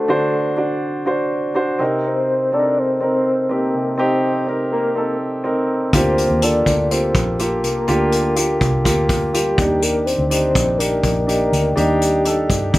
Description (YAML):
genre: piano-driven pop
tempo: 123 BPM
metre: 4/4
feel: straight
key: G minor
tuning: A4 = 441 Hz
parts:
  - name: soft octave-layered synth lead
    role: melody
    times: 0.0-12.7 s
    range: G4 to D5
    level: -20 LUFS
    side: left 1 dB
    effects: chorus, tremolo
  - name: warm concert grand piano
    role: accompaniment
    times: 0.0-12.8 s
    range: C3 to D5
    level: -18 LUFS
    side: equal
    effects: none
  - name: vintage muted fingered electric bass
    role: bass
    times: 5.9-12.8 s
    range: Bb1 to G2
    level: -22 LUFS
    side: equal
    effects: none
  - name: unplugged drum kit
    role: drums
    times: 5.9-12.8 s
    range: hi-hat, kick drum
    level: -21 LUFS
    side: equal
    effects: none
room: little or no reverb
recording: none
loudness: -16 LUFS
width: side -17 dB against mid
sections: 0.0-12.8 A section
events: none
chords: 0.0 D7; 1.8 Cm7; 5.9 Gm7; 9.6 Ebmaj7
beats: | 0.10 0.58 1.07 1.55 | 2.04 2.53 3.01 3.50 | 3.98 4.47 4.96 5.44 | 5.93 6.42 6.90 7.39 | 7.88 8.36 8.85 9.33 | 9.82 10.31 10.79 11.28 | 11.77 12.25 12.74